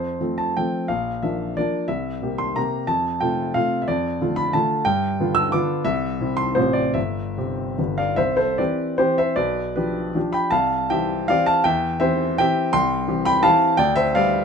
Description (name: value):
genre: classical, romantic triple-time dance for piano with dotted rhythms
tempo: 140-194 BPM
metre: 3/4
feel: rubato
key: F major, C major from 3.9 s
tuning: A4 = 440 Hz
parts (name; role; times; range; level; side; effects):
- warm baby grand piano; solo; 0.0-14.4 s; G1 to E6; -19 LUFS; equal; none
room: light reverb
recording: minimal, uncompressed stereo recording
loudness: -19 LUFS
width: side -6 dB against mid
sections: 0.0-8.2 A section; 8.2-14.4 B section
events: none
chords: 0.0 F; 0.9 Bb; 1.9 C7; 2.9 F; 3.9 Dm/F; 4.9 G7; 5.9 C; 6.6 F/A; 7.0 C/G; 7.8 G; 8.2 C; 9.4 G7/B; 10.5 C; 11.6 C/E; 12.7 C; 13.8 G7/D